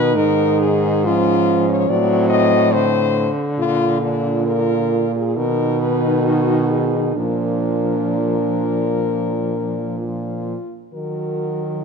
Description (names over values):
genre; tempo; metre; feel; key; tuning
classical, lyrical piece for horn quartet; 60-73 BPM; 4/4; rubato; unclear; A4 = 436 Hz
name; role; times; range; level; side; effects
mellow French horn; melody; 0.0-11.8 s; D4 to Eb5; -21 LUFS; left 8 dB; none
mellow French horn; second line; 0.0-11.8 s; C4 to Gb4; -22 LUFS; right 10 dB; none
warm French horn; accompaniment; 0.0-11.8 s; D3 to F#3; -23 LUFS; left 2 dB; none
warm French horn; bass; 0.0-11.8 s; Ab2 to Eb3; -22 LUFS; right 3 dB; none
room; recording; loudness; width
moderate scoring stage reverb, RT60 1.9 s; dark, warm production; -16 LUFS; side -5 dB against mid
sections
0.0-10.9 A section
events
none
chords
0.2 Db69/Ab; 1.9 D7b9/A; 3.6 Bb; 5.4 B; 7.2 Bb; 10.9 Ebm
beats
| 0.17 1.06 1.90 2.74 | 3.59 4.49 5.37 6.25 | 7.16 8.11 9.05 9.98 | 10.95